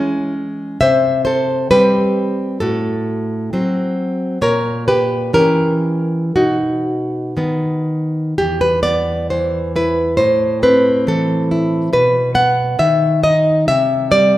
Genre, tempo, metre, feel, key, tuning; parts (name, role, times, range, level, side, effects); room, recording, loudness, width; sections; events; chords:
romantic piece for solo classical guitar; 57-70 BPM; 2/4; rubato; E minor; A4 = 442 Hz
nylon-string guitar; solo; 0.0-14.4 s; E2 to F#5; -14 LUFS; equal
wet recital hall reverb, RT60 1.6 s; recorded in a church or concert hall; -14 LUFS; side -15 dB against mid
0.0-8.4 A section; 8.4-14.4 B section
0.0 C#m; 0.8 C5; 2.6 F#dim/A; 4.4 A#dim7; 6.3 B; 8.4 E5; 10.2 Am; 11.9 B; 13.7 C